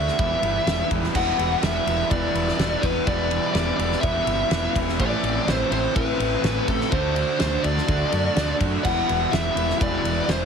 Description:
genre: quiet-loud alternative rock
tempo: 125 BPM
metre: 4/4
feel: straight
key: E minor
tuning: A4 = 442 Hz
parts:
  - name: fuzz lead guitar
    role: melody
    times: 0.0-10.4 s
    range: A4 to F#5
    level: -25 LUFS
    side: equal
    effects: distortion
  - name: fuzz guitar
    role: riff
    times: 0.0-10.4 s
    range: A2 to F#4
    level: -28 LUFS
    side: right 12 dB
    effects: distortion
  - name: raw garage guitar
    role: riff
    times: 0.0-10.4 s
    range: A2 to F#4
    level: -30 LUFS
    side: left 13 dB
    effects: overdrive
  - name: growling fingered electric bass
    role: bass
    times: 0.0-10.4 s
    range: E1 to F#2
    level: -27 LUFS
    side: equal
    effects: overdrive
  - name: loose indie drum kit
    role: drums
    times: 0.1-10.4 s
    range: crash cymbal, kick drum, ride cymbal, snare drum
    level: -26 LUFS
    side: equal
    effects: none
  - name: distorted electric guitar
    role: riff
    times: 1.1-10.4 s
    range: E2 to D4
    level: -30 LUFS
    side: left 1 dB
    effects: overdrive
room: light reverb, small room ambience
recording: heavily compressed radio sound, multiband compression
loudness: -20 LUFS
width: side -6 dB against mid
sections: 0.0-1.1 A section; 1.1-10.4 A section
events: none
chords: 0.2 Em; 5.0 Am; 6.9 D; 8.8 Em7

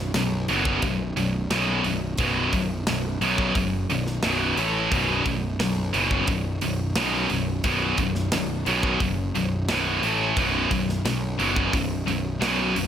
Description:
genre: heavy metal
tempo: 88 BPM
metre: 4/4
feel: straight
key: unclear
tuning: A4 = 440 Hz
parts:
  - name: heavy high-gain guitar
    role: riff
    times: 0.0-12.9 s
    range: B1 to A3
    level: -25 LUFS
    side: right 6 dB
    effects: distortion
  - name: tight distorted guitar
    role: riff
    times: 0.0-12.9 s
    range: B1 to A3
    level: -29 LUFS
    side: left 11 dB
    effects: distortion
  - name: fuzz picked electric bass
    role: bass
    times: 0.0-12.9 s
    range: B0 to B1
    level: -29 LUFS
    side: equal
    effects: overdrive
  - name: tight metal drum kit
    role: drums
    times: 0.1-12.9 s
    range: hi-hat, kick drum, snare drum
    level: -30 LUFS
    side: equal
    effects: none
room: small room ambience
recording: none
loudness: -22 LUFS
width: side -9 dB against mid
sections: 0.0-12.9 A section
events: none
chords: 0.0 B5; 4.6 A5; 4.9 B5; 10.0 A5; 10.4 B5

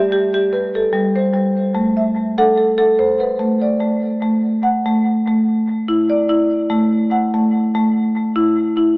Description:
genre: world meditative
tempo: 73 BPM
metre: 3/4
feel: straight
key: A dorian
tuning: A4 = 441 Hz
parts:
  - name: marimba with medium mallets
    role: solo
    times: 0.0-9.0 s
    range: G3 to F#5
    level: -14 LUFS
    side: equal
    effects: diffuse ambient delay
room: wet scoring stage reverb, RT60 1.8 s, small room ambience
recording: AM radio sound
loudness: -14 LUFS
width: side -25 dB against mid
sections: 0.0-4.2 A section; 4.2-9.0 B section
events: none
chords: 0.0 G; 1.8 Am; 4.2 A5

